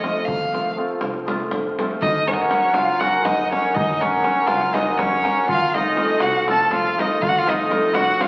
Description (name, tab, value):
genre	balkan folk, Balkan wedding band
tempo	242 BPM (eighths)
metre	7/8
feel	straight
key	unclear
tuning	A4 = 440 Hz
part	rich violin	melody	0.0-8.3 s	Db5 to A5	-25 LUFS	equal	none
part	cimbalom	accompaniment	0.0-8.3 s	F3 to Gb4	-24 LUFS	equal	none
part	upright bass	bass	0.0-8.3 s	C2 to Gb2	-42 LUFS	equal	none
part	davul	percussion	0.0-8.3 s	none	-30 LUFS	equal	none
part	clear trumpet	second line	2.0-8.3 s	Db4 to A4	-25 LUFS	equal	none
room	wet large studio reverb, RT60 1.3 s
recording	very old 78 rpm record, vinyl crackle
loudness	-20 LUFS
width	mono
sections	0.0-2.0 A section; 2.0-8.3 A section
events	none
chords	0.0 F; 2.0 Gb; 5.5 F